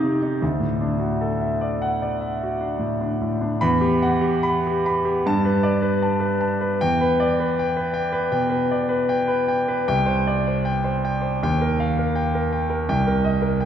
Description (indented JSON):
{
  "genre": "classical, impressionist solo piano",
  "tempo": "77 BPM",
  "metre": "4/4",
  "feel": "uneven beats, rubato",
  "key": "unclear",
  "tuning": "A4 = 444 Hz",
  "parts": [
    { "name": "clear concert grand piano", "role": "solo", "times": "0.0-13.7 s", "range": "C2 to A6", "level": "-19 LUFS", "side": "equal", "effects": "none" }
  ],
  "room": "wet concert hall reverb, RT60 2.2 s",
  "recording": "heard from further back in the room",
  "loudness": "-19 LUFS",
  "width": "side -9 dB against mid",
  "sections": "0.0-3.6 A section; 3.6-13.7 B section",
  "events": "none",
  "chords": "0.4 Dadd9; 3.6 Emadd9; 5.2 Gadd9; 6.8 Em7; 9.8 Csus2; 11.4 D#add9; 12.9 Cm7",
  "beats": "| 0.41 1.22 2.02 2.80 | 3.60 4.42 5.24 6.01 | 6.78 7.54 8.30 9.07 | 9.85 10.62 11.38 12.13 | 12.86 13.59"
}